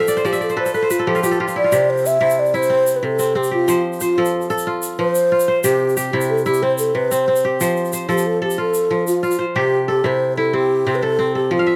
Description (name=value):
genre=west african traditional, West African string and xylophone music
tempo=122 BPM (dotted quarters)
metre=12/8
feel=straight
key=C major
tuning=A4 = 441 Hz
part: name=breathy mellow wooden-headed alto flute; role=melody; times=0.0-11.8 s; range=F4 to E5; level=-20 LUFS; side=equal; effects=none
part: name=kora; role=arpeggios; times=0.0-11.8 s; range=C3 to G5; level=-22 LUFS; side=equal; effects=none
part: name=egg shaker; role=percussion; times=0.1-9.4 s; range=none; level=-31 LUFS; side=equal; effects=none
room=light reverb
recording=none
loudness=-18 LUFS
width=mono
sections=0.0-9.6 A section; 9.6-11.8 B section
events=kora fill 0.0-1.7, 11.6; alto flute solo 0.0-9.6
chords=0.0 F; 1.7 C; 3.7 F; 5.6 C; 7.6 F; 9.6 C